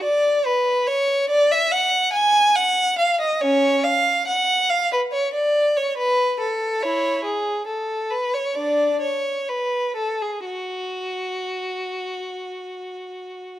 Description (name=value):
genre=classical, baroque-style suite movement for unaccompanied violin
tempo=60-72 BPM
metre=4/4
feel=rubato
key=F# minor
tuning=A4 = 440 Hz
part: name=rich violin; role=solo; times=0.0-13.6 s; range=C#4 to G#5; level=-19 LUFS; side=equal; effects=none
room=light reverb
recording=close, detailed microphones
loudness=-19 LUFS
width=side -13 dB against mid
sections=0.0-13.6 A section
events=none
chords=none